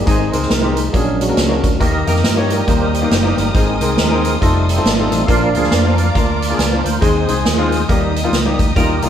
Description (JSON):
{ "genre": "uptempo gospel", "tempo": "138 BPM", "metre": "4/4", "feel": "swing 61% on 8ths", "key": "Ab major", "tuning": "A4 = 440 Hz", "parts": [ { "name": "percussive tonewheel organ", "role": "sustained chords", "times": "0.0-9.1 s", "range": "Eb3 to F5", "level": "-20 LUFS", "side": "right 2 dB", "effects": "slow rotary speaker, chorus vibrato" }, { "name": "fingered electric bass", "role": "bass", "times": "0.0-9.1 s", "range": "F1 to G2", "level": "-19 LUFS", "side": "equal", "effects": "none" }, { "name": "clear grand piano", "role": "accompaniment", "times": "0.1-9.1 s", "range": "Ab2 to Db5", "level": "-20 LUFS", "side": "left 3 dB", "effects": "none" }, { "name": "swinging big-band drum kit", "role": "drums", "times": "0.1-9.1 s", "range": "hi-hat, kick drum, snare drum", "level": "-17 LUFS", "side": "right 1 dB", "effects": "none" }, { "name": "dark studio string section", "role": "sustained chords", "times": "1.8-9.1 s", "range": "D5 to Eb6", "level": "-26 LUFS", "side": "equal", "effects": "none" } ], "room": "moderate large studio reverb, RT60 1.2 s", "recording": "band playing live in one room", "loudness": "-13 LUFS", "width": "side -9 dB against mid", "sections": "0.0-9.1 A section", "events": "tonewheel organ solo 0.0-9.1", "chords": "0.1 Ab; 0.9 Bb7alt; 1.8 Eb; 3.5 Ab; 4.4 F7; 5.3 Bb; 7.0 Ab; 7.9 Eb", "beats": "| 0.07 0.51 0.94 1.37 | 1.81 2.24 2.68 3.11 | 3.54 3.98 4.41 4.85 | 5.28 5.72 6.15 6.59 | 7.02 7.46 7.89 8.32 | 8.76" }